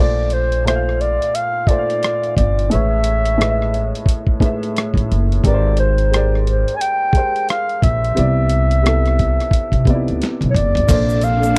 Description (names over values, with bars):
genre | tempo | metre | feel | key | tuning
R&B, neo-soul | 88 BPM | 4/4 | swing 60% on 16ths | unclear | A4 = 440 Hz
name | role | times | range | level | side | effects
breathy clarinet | melody | 0.0-11.6 s | C5 to Ab5 | -22 LUFS | equal | none
warm upright piano | accompaniment | 0.0-11.6 s | A2 to F5 | -25 LUFS | equal | none
upright bass | bass | 0.0-11.6 s | Gb1 to C3 | -20 LUFS | equal | none
dusty soul sampler-style drum kit | drums | 0.3-11.6 s | crash cymbal, hi-hat, kick drum, rim click, snare drum, toms | -20 LUFS | equal | none
warm studio string section | sustained chords | 10.9-11.6 s | C3 to A4 | -24 LUFS | equal | none
tube shaker and finger snaps | percussion | 10.9-11.6 s | none | -30 LUFS | equal | none
room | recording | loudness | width
little or no reverb | dry, close 1970s-style studio recording | -17 LUFS | mono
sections
0.0-10.9 A section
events
drum fill 10.2-10.9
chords
0.0 Bbmaj9; 2.7 Amaj9; 5.4 Abmaj9; 8.2 Cmaj9; 10.9 Bbmaj9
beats
0.66 1.34 2.02 | 2.70 3.39 4.07 4.75 | 5.43 6.11 6.79 7.48 | 8.16 8.84 9.52 10.20 | 10.89 11.57